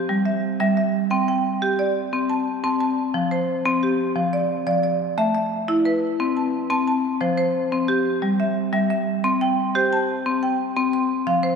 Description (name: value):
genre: southern african traditional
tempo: 118 BPM (dotted quarters)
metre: 12/8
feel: straight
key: C major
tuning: A4 = 440 Hz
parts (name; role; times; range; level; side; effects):
- marimba with medium hard mallets; solo; 0.0-11.6 s; F3 to C6; -19 LUFS; equal; none
room: wet church reverb, RT60 3.4 s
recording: recorded in a church or concert hall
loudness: -19 LUFS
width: side -6 dB against mid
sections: 0.0-9.2 A section; 9.2-11.6 B section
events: none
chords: 0.1 Em/G; 1.1 C5; 3.1 F5; 5.2 A5; 6.2 Am/C; 7.2 F; 8.2 Em/G; 9.2 C5